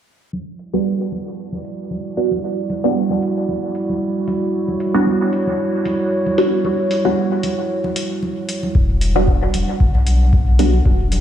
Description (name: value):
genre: dub techno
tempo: 114 BPM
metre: 4/4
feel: swing 54% on 16ths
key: E dorian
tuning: A4 = 440 Hz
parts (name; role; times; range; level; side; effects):
- dark analog pad; sustained chords; 0.3-11.2 s; G3 to F#5; -21 LUFS; right 1 dB; chorus, sidechain pumping
- congas; percussion; 0.3-11.2 s; none; -29 LUFS; right 2 dB; sidechain pumping on perc, dub echo
- electronic hi-hat; drums; 0.6-11.2 s; none; -29 LUFS; left 1 dB; none
- filtered dub chord stab; stabs; 0.7-10.7 s; G3 to F#4; -20 LUFS; right 2 dB; phaser, sidechain pumping, dub echo
- warm sub bass; bass; 8.8-11.2 s; E1 to B1; -16 LUFS; left 1 dB; tube saturation, sidechain pumping
- electronic kick drum; drums; 8.8-11.0 s; none; -16 LUFS; left 1 dB; none
room: light reverb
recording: played on a big sound system in a bare room, stone room reverb, low-pass filter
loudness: -16 LUFS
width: side -10 dB against mid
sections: 0.3-8.8 A section; 8.8-11.2 B section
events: filter sweep 0.3-8.8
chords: 0.3 Em9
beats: | 0.33 0.86 1.38 1.91 | 2.44 2.96 3.49 4.01 | 4.54 5.07 5.59 6.12 | 6.64 7.17 7.70 8.22 | 8.75 9.28 9.80 10.33 | 10.86